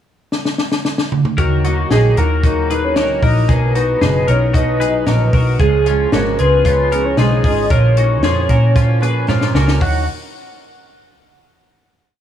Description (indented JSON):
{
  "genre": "jangly indie pop",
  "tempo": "114 BPM",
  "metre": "4/4",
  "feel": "straight",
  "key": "Eb minor",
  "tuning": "A4 = 440 Hz",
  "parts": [
    { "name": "compact cocktail drum kit", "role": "drums", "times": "0.3-9.9 s", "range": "hi-hat, kick drum, snare drum, toms", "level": "-18 LUFS", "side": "left 1 dB", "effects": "none" },
    { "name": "warbly nostalgic lead", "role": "melody", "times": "1.4-10.1 s", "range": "Gb4 to Gb5", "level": "-19 LUFS", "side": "equal", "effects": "chorus, tape echo" },
    { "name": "picked steel-string acoustic guitar", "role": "accompaniment", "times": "1.4-10.0 s", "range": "Bb2 to Eb4", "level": "-22 LUFS", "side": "right 4 dB", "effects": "none" },
    { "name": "twelve-string electric guitar", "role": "arpeggios", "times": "1.4-10.1 s", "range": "Db4 to Cb5", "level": "-22 LUFS", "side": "left 5 dB", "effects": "analog chorus, tape echo" },
    { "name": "vintage muted picked electric bass", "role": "bass", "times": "1.4-10.1 s", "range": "F#1 to Bb2", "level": "-16 LUFS", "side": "equal", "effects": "none" }
  ],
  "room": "light reverb, small room ambience",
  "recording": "none",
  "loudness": "-12 LUFS",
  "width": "side -10 dB against mid",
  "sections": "0.0-1.4 pickup bar; 1.4-9.8 verse; 9.8-11.9 final chord",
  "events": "drum fill 0.3-1.4, 9.3-9.8",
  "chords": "0.0 N.C.; 1.4 Ebm; 3.5 B; 5.6 Db; 7.7 Bbm; 9.8 Ebm"
}